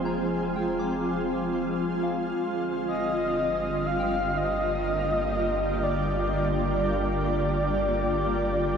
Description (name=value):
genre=ambient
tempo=61 BPM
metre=4/4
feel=straight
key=unclear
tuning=A4 = 440 Hz
part: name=breathy flute-like synth lead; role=melody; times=0.0-8.8 s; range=C5 to F5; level=-29 LUFS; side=equal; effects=analog chorus, tape echo
part: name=shimmering ambient pad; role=sustained chords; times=0.0-8.8 s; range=D3 to G5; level=-27 LUFS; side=equal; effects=chorus, built-in reverb
part: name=soft synth bell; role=arpeggios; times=0.0-8.8 s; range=Bb3 to D6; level=-40 LUFS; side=equal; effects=chorus, phaser, tape echo
part: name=warm sub bass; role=bass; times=0.0-8.8 s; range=F1 to G1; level=-34 LUFS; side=equal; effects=none
room=wet huge ambient reverb, RT60 7.5 s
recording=worn, warbling old tape, cassette tape, warbly pitch drift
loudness=-24 LUFS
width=side -7 dB against mid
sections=0.0-8.8 A section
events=fade-in on synth bell 0.0-8.8; fade-in on sub bass 0.0-8.8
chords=0.0 Fm; 2.4 Ebmaj7/G